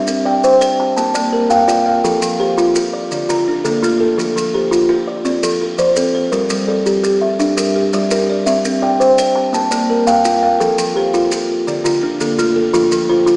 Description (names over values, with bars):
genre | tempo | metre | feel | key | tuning
southern african traditional, mbira-style interlocking cycle | 112 BPM (dotted quarters) | 12/8 | straight | F major | A4 = 441 Hz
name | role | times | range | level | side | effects
buzzing kalimba | arpeggios | 0.0-13.4 s | D3 to A5 | -15 LUFS | equal | none
buzzing kalimba | arpeggios | 0.0-13.4 s | D3 to A5 | -16 LUFS | equal | none
maracas | percussion | 0.1-13.4 s | none | -25 LUFS | right 1 dB | none
room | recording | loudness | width
wet church reverb, RT60 2.6 s | recorded in a church or concert hall, small speaker sound | -12 LUFS | side -30 dB against mid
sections
0.0-12.7 A section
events
none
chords
0.0 C; 1.0 Bb; 2.0 F; 3.1 Dm; 4.2 F; 6.3 Gm; 8.5 C; 9.5 Bb; 10.6 F; 11.7 Dm; 12.7 F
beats
0.43 0.97 1.50 | 2.04 2.57 3.11 3.65 | 4.18 4.72 5.25 5.79 | 6.32 6.86 7.39 7.93 | 8.46 9.00 9.53 10.07 | 10.60 11.13 11.67 12.20 | 12.74 13.27